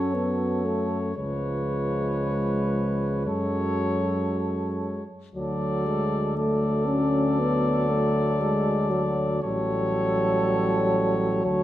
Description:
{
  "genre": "classical, hymn-like piece for brass band",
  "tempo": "58 BPM",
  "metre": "4/4",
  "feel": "rubato",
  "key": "F# minor",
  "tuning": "A4 = 440 Hz",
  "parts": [
    { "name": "warm cornet", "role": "melody", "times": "0.0-11.6 s", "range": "C#5 to D5", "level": "-31 LUFS", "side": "left 5 dB", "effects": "none" },
    { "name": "mellow flugelhorn", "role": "second line", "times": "0.0-11.6 s", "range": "A4 to B4", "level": "-31 LUFS", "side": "right 4 dB", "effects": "none" },
    { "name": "dark euphonium", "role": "accompaniment", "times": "0.0-11.6 s", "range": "F#3 to C#4", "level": "-27 LUFS", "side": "left 1 dB", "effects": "none" },
    { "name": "warm trombone", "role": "accompaniment", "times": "0.0-11.6 s", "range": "E#3 to G3", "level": "-33 LUFS", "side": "right 3 dB", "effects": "none" },
    { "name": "mellow tuba", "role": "bass", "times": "0.0-11.6 s", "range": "A1 to F#2", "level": "-29 LUFS", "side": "equal", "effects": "none" }
  ],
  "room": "moderate recital hall reverb, RT60 1.6 s",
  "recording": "none",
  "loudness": "-22 LUFS",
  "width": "side -13 dB against mid",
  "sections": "0.0-11.6 A section",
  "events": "none",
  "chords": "0.0 F#m; 1.2 C#7; 3.3 F#m; 5.3 D; 9.4 A7"
}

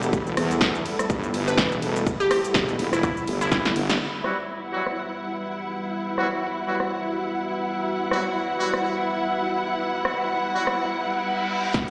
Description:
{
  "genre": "bass house",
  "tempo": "124 BPM",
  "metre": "4/4",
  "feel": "swing 57% on 16ths",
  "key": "E minor",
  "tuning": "A4 = 440 Hz",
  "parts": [
    { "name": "glassy wavetable pluck", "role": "melody", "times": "0.0-3.6 s", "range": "E4 to B4", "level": "-29 LUFS", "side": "equal", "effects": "chorus, digital delay" },
    { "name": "dark analog pad", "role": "sustained chords", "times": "0.0-11.9 s", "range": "G3 to F#5", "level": "-35 LUFS", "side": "equal", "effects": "chorus, sidechain pumping" },
    { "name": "wobble bass", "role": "bass", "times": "0.0-4.0 s", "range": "E1 to E2", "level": "-28 LUFS", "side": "equal", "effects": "chorus, tube saturation, sidechain pumping" },
    { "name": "big-room dance drum kit", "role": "drums", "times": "0.0-11.9 s", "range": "crash cymbal, hi-hat, ride cymbal, rim click, shaker, snare drum", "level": "-29 LUFS", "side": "equal", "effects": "low-pass filter on hats, low-pass filter on cymbals, low-pass filter on perc, low-pass filter on snare" },
    { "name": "dark studio string section", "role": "texture", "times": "0.0-11.9 s", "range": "G3 to F#5", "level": "-30 LUFS", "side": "equal", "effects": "sidechain pumping" },
    { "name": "electronic kick drum", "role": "drums", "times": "0.1-3.6, 11.7-11.9 s", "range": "none", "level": "-28 LUFS", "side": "equal", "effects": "none" },
    { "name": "metallic FM bass", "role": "bass", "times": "3.0-3.3 s", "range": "E1", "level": "-33 LUFS", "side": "equal", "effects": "tube saturation, sidechain pumping" },
    { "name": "brilliant horn section", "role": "stabs", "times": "4.2-10.6 s", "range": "F#3 to F#4", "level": "-31 LUFS", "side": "equal", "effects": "sidechain pumping, low-pass filter, digital delay" },
    { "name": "reverse cymbal and riser", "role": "sound effects", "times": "11.1-11.9 s", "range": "none", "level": "-35 LUFS", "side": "equal", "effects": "none" }
  ],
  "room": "wet lush hall reverb, RT60 1.8 s, digital ambience",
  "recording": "played on a big sound system in a bare room, large studio reverb, small speaker sound",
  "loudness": "-25 LUFS",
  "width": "mono",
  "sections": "0.0-4.0 A section; 4.0-11.7 B section",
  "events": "drop 0.0-4.0; drum fill 3.5-4.0, 11.7; band accent 3.9; reverse cymbal 11.1-11.7",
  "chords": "0.0 Emadd9"
}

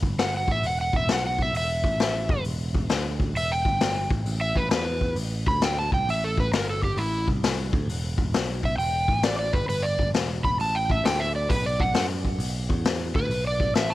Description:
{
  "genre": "blues rock power trio and southern rock",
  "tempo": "133 BPM",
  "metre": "4/4",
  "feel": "swing 66% on 8ths",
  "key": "unclear",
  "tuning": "A4 = 440 Hz",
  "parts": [
    { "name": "picked electric bass", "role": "bass", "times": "0.0-13.9 s", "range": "E1 to F#2", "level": "-29 LUFS", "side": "right 1 dB", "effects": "none" },
    { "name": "vintage drum kit", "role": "drums", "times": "0.0-13.9 s", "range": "hi-hat, kick drum, snare drum", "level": "-26 LUFS", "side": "left 2 dB", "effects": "none" },
    { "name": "overdriven slide guitar", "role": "melody", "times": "0.2-13.9 s", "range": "E4 to B5", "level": "-27 LUFS", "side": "right 1 dB", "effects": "none" }
  ],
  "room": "small room ambience",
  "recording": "1960s-style stereo",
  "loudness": "-22 LUFS",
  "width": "side -16 dB against mid",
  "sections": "0.0-13.9 A section",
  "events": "electric slide guitar solo 0.0-13.9",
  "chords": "0.4 Esus24; 1.1 Bsus4; 1.5 N.C.; 1.8 A5; 2.2 Em; 2.9 N.C.; 3.4 Em; 3.6 N.C.; 4.3 Asus2; 4.7 E5; 5.2 N.C.; 5.4 G/D; 5.8 Am7; 6.5 Gmadd9; 7.0 A5; 7.2 N.C.; 8.3 Bsus4; 8.8 Em; 9.0 A7sus4; 9.5 G5; 10.1 E5; 10.6 Emadd11/A; 11.0 Dsus24; 11.5 Bm; 11.9 N.C.; 13.1 Bm"
}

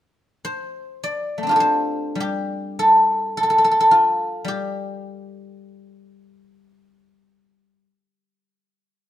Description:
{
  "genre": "chinese traditional",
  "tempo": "53 BPM",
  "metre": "4/4",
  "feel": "rubato",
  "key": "unclear",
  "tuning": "A4 = 443 Hz",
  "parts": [
    { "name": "guzheng", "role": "solo", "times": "0.4-8.4 s", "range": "G3 to D5", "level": "-18 LUFS", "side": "equal", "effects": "none" }
  ],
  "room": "light reverb",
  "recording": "band playing live in one room",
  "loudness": "-17 LUFS",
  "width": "side -12 dB against mid",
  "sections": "0.0-9.1 A section",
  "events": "none",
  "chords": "none"
}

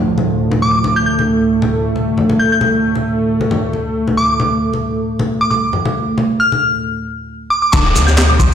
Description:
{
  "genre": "breakbeat, breaks",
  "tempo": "135 BPM",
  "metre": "4/4",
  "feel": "swing 55% on 16ths",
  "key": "D minor",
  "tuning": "A4 = 444 Hz",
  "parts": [
    { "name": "lush unison pad", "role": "sustained chords", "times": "0.0-8.5 s", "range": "D2 to F4", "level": "-17 LUFS", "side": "right 1 dB", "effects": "chorus, vintage 12-bit sampler grit, sidechain pumping" },
    { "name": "congas", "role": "percussion", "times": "0.2-8.4 s", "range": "none", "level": "-20 LUFS", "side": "left 2 dB", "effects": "none" },
    { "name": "glassy synth bell", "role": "melody", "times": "0.6-8.2 s", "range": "D6 to G6", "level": "-16 LUFS", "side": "equal", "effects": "chorus, small speaker sound, vintage 12-bit sampler grit, digital delay" },
    { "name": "percussive tonewheel organ", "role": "riff", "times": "7.7-8.5 s", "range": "D3 to G3", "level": "-20 LUFS", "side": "equal", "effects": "chorus vibrato, slow rotary speaker, tube saturation, digital delay" },
    { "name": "warm 808-style bass", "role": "bass", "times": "7.7-8.5 s", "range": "D1 to D2", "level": "-13 LUFS", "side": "left 1 dB", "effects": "none" },
    { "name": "crunchy breakbeat drum kit", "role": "drums", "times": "7.7-8.5 s", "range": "crash cymbal, kick drum, ride cymbal, snare drum", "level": "-14 LUFS", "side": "equal", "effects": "none" },
    { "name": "electronic shaker and handclaps", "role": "drums", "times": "7.7-8.5 s", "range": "none", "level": "-20 LUFS", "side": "left 1 dB", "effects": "overdrive" },
    { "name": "downlifter", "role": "sound effects", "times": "7.7-8.5 s", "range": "none", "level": "-20 LUFS", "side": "equal", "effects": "none" }
  ],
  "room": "moderate plate reverb, RT60 1.3 s",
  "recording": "played on a big sound system in a bare room, stone room reverb",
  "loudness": "-13 LUFS",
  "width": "side -8 dB against mid",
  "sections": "0.0-7.7 A section",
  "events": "break 6.8-7.7",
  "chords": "0.0 Dm"
}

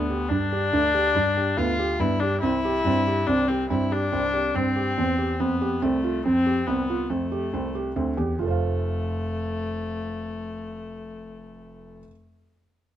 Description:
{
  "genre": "contemporary instrumental, chamber music in an uneven meter",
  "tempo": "141 BPM",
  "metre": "7/4",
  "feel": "straight",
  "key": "F lydian",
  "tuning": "A4 = 440 Hz",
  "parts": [
    { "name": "warm viola", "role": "second line", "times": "0.0-12.0 s", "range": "A3 to F4", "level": "-26 LUFS", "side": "left 4 dB", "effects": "none" },
    { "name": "felt-muted upright piano", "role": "arpeggios", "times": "0.0-12.1 s", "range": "B3 to F5", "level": "-27 LUFS", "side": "right 6 dB", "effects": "none" },
    { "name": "dark grand piano", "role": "bass", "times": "0.0-12.0 s", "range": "F1 to G2", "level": "-27 LUFS", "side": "left 1 dB", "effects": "none" }
  ],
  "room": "light reverb",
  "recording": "close, detailed microphones",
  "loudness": "-22 LUFS",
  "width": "side -11 dB against mid",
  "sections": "0.0-8.4 A section; 8.4-11.4 B section",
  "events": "none",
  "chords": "0.0 G5; 2.4 C; 5.4 Fadd9; 8.4 F"
}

